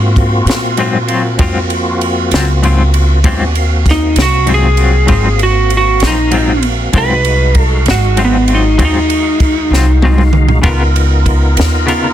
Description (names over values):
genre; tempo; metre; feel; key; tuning
slow blues; 65 BPM (dotted quarters); 12/8; straight; Ab mixolydian; A4 = 439 Hz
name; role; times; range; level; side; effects
bright tonewheel organ; sustained chords; 0.0-12.1 s; Ab3 to F5; -19 LUFS; equal; slow rotary speaker, chorus vibrato
upright bass; bass; 0.0-12.1 s; Ab1 to Bb2; -12 LUFS; equal; none
compact cocktail drum kit; drums; 0.2-12.0 s; kick drum, ride cymbal, snare drum, toms; -16 LUFS; right 1 dB; none
semi-hollow electric guitar; accompaniment; 0.8-12.1 s; Ab2 to Bb4; -17 LUFS; left 4 dB; tremolo
lightly driven lead guitar; melody; 3.9-10.6 s; Cb4 to Cb5; -14 LUFS; right 1 dB; none
room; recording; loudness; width
small room ambience; dense, heavily limited modern master; -9 LUFS; side -11 dB against mid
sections
0.0-12.1 A section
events
lead electric guitar solo 0.0-12.1; drum fill 9.7-10.6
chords
0.0 Ab13; 10.6 Db13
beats
0.47 1.39 2.32 | 3.24 4.17 5.09 6.02 | 6.94 7.87 8.79 9.72 | 10.64 11.57